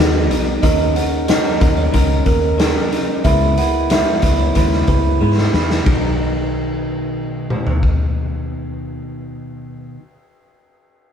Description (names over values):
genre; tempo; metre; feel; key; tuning
indie pop, bedroom pop; 92 BPM; 4/4; straight; B major; A4 = 440 Hz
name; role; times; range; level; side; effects
buzzing kalimba; second line; 0.0-7.8 s; F#4 to F#5; -23 LUFS; right 5 dB; none
electric guitar at the edge of break-up; accompaniment; 0.0-10.0 s; B2 to B4; -20 LUFS; equal; vibrato effect
warbly lo-fi synth keys; accompaniment; 0.0-0.7 s; B3 to A#5; -25 LUFS; right 3 dB; chorus
vintage muted fingered electric bass; bass; 0.0-9.9 s; B1 to G#2; -19 LUFS; equal; none
raw garage drum kit; drums; 0.3-8.0 s; hi-hat, kick drum, ride cymbal, snare drum, toms; -18 LUFS; left 1 dB; none
room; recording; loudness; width
light reverb; band playing live in one room; -14 LUFS; side -8 dB against mid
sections
0.0-5.9 A section; 5.9-8.5 B section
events
drum fill 5.2-5.9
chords
0.0 G#m7; 0.6 D#m7; 3.2 C#m7; 5.9 Bmaj7